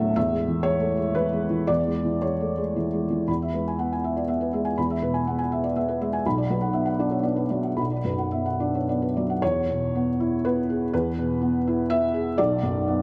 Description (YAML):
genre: neoclassical minimalist piano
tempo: 108-125 BPM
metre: 3/4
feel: rubato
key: unclear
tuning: A4 = 440 Hz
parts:
  - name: felt-muted upright piano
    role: solo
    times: 0.0-13.0 s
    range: B1 to B5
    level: -25 LUFS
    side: equal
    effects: none
room: moderate scoring stage reverb, RT60 1.8 s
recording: none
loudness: -25 LUFS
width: mono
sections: 0.0-3.3 A section; 3.3-9.4 B section; 9.4-13.0 C section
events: none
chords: 0.2 C#m/E; 3.3 E; 6.3 Bm; 9.4 E; 12.4 Bm